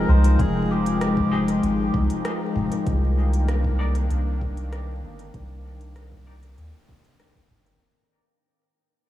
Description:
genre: ambient dub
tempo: 97 BPM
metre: 4/4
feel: straight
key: unclear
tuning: A4 = 440 Hz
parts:
  - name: melodica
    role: melody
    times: 0.0-1.9 s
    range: G4 to C5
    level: -32 LUFS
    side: right 2 dB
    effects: dub echo
  - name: warm analog pad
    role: sustained chords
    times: 0.0-7.8 s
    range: Eb3 to G5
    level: -25 LUFS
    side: left 2 dB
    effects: chorus, tremolo
  - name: soft dub sub bass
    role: bass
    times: 0.0-7.8 s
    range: F1 to Eb2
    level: -22 LUFS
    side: equal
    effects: none
  - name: organic electronic drum kit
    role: drums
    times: 0.2-7.8 s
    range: hi-hat, rim click, toms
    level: -34 LUFS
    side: equal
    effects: dub echo
  - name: electronic kick drum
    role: drums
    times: 0.4-7.5 s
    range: none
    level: -28 LUFS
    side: equal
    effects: none
  - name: clean electric guitar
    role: stabs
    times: 1.3-6.4 s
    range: Eb4 to Eb5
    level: -39 LUFS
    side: left 2 dB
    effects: tremolo, low-pass filter, dub echo
room: wet huge ambient reverb, RT60 8.3 s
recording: dreamy mix soaked in reverb, vinyl crackle, small room ambience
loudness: -20 LUFS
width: side -13 dB against mid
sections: 0.0-7.8 A section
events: fade-out 0.0-7.8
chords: 0.0 Fm9; 2.9 Cm9

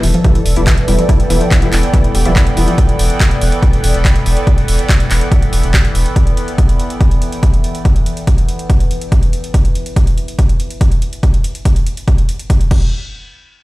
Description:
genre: driving peak-time techno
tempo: 142 BPM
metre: 4/4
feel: straight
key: E minor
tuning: A4 = 439 Hz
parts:
  - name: analog pluck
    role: riff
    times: 0.0-2.7 s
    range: E3 to E4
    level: -20 LUFS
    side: equal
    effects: chorus, tube saturation, sidechain pumping, tape echo
  - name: saturated sub bass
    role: bass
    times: 0.0-6.1 s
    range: E1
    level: -16 LUFS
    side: equal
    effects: overdrive, sidechain pumping, low-pass filter
  - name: overtone-sweeping drone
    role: drone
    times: 0.0-9.6 s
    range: E3 to B3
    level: -24 LUFS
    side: equal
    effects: chorus, built-in reverb, sidechain pumping
  - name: techno drum kit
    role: drums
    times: 0.0-12.8 s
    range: crash cymbal, handclaps, hi-hat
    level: -23 LUFS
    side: equal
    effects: sidechain pumping on hats, sidechain pumping on cymbals
  - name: airy breathy pad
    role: texture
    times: 0.0-9.5 s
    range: A4 to G5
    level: -23 LUFS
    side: right 1 dB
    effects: chorus, sidechain pumping
  - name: rave stab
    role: stabs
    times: 0.2-2.6 s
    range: G3 to E4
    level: -22 LUFS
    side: left 2 dB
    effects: chorus, built-in reverb, sidechain pumping, dub echo
  - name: electronic kick drum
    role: drums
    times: 0.2-12.8 s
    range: none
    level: -12 LUFS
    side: equal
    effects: none
room: little or no reverb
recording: played on a big sound system in a bare room, large studio reverb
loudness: -11 LUFS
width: side -19 dB against mid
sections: 0.0-12.9 A section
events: fade-out on analog synth pad 0.0-9.5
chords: 0.0 Em; 12.7 N.C.

